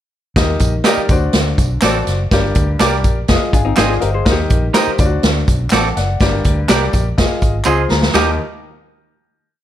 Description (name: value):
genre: uptempo 1960s-style soul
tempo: 123 BPM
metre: 4/4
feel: straight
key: Eb major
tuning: A4 = 440 Hz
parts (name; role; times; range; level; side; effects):
- warm upright piano; accompaniment; 0.4-8.4 s; Eb2 to Bb5; -20 LUFS; left 3 dB; none
- vintage muted fingered electric bass; bass; 0.4-8.4 s; F1 to Eb2; -19 LUFS; equal; none
- swinging big-band drum kit; drums; 0.4-8.3 s; hi-hat, kick drum, ride cymbal, snare drum; -15 LUFS; equal; none
- tambourine and handclaps; percussion; 0.4-8.4 s; none; -27 LUFS; left 1 dB; none
- electric guitar at the edge of break-up; stabs; 0.8-8.3 s; C4 to Eb5; -19 LUFS; right 7 dB; none
- hollow-body jazz guitar; riff; 3.5-4.4 s; C4 to C5; -21 LUFS; left 8 dB; none
room: light reverb, small room ambience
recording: none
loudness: -12 LUFS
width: side -11 dB against mid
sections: 0.4-8.1 verse; 8.1-9.6 final chord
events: upright piano fill 3.5-4.3, 7.4-8.1; drum fill 7.7-8.1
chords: 0.4 Eb; 1.1 D7; 2.3 Gm; 3.3 Fm7; 4.3 Eb; 5.0 D7; 6.2 Gm; 7.2 Fm7; 8.1 Eb